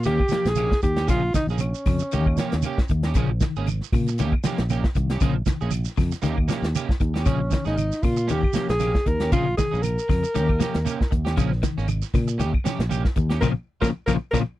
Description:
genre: afrobeat.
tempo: 117 BPM.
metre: 4/4.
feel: swing 56% on 16ths.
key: Bb dorian.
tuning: A4 = 441 Hz.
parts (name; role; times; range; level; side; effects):
warm alto saxophone; melody; 0.0-2.9, 7.3-14.4 s; Db4 to Bb4; -26 LUFS; equal; none.
fingered electric bass; bass; 0.0-14.4 s; Ab1 to Bb2; -25 LUFS; equal; none.
shekere; percussion; 0.0-14.4 s; none; -31 LUFS; right 8 dB; none.
clean electric guitar; arpeggios; 0.1-14.4 s; Bb2 to F3; -28 LUFS; left 7 dB; tremolo.
electric guitar at the edge of break-up; stabs; 0.1-14.4 s; F3 to Ab4; -31 LUFS; right 7 dB; analog chorus.
warm soul drum kit; drums; 0.1-14.4 s; hi-hat, kick drum, snare drum; -24 LUFS; equal; none.
claves; percussion; 0.2-14.4 s; none; -40 LUFS; left 17 dB; none.
room: little or no reverb.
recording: none.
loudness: -20 LUFS.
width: side -15 dB against mid.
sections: 0.0-14.6 A section.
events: band accent 13.4-14.6.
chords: 0.1 Eb7; 1.1 Bbm7; 2.1 Eb7; 3.2 Bbm7; 4.2 Eb7; 5.2 Bbm7; 6.2 Eb7; 7.3 Bbm7; 8.3 Eb7; 9.3 Bbm7; 10.4 Eb7; 11.4 Bbm7; 12.4 Eb7; 13.4 Bbm.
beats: 0.06 0.57 | 1.09 1.60 2.12 2.64 | 3.15 3.67 4.18 4.70 | 5.21 5.73 6.24 6.76 | 7.27 7.79 8.30 8.81 | 9.33 9.84 10.36 10.87 | 11.38 11.89 12.41 12.92 | 13.43 13.94.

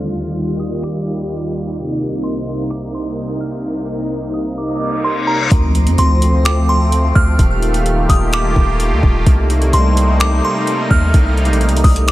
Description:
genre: hip hop, atmospheric cloud-rap.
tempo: 128 BPM.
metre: 4/4.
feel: half-time.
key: C dorian.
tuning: A4 = 440 Hz.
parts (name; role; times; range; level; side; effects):
sweeping resonant pad; sustained chords; 0.0-12.1 s; C2 to G4; -19 LUFS; right 1 dB; chorus, sidechain pumping.
twinkling granular texture; texture; 0.0-5.5 s; G4 to D6; -34 LUFS; left 1 dB; none.
delicate synth tine bell; melody; 0.6-12.1 s; Bb5 to F6; -21 LUFS; equal; chorus, digital delay.
smooth R&B drum kit; drums; 0.8-12.1 s; finger snaps, hi-hat, kick drum; -16 LUFS; equal; none.
reverse cymbal and impact; sound effects; 4.9-7.4 s; none; -25 LUFS; left 2 dB; none.
long sustained 808-style bass; bass; 5.5-12.1 s; Eb1 to F2; -14 LUFS; equal; none.
room: light reverb.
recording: low-pass filter.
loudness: -13 LUFS.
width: side -16 dB against mid.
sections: 0.0-5.5 A section; 5.5-12.1 B section.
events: filter sweep 0.0-5.5; reverse cymbal 4.9-5.5; impact 5.5-7.4.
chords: 0.0 Ebmaj7; 1.8 Cm9; 5.5 Dm7; 7.4 Ebmaj7; 9.3 Cm7.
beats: 0.36 0.83 1.30 | 1.76 2.23 2.70 3.17 | 3.64 4.11 4.58 5.05 | 5.51 5.98 6.45 6.92 | 7.39 7.86 8.33 8.80 | 9.27 9.73 10.20 10.67 | 11.14 11.61 12.08.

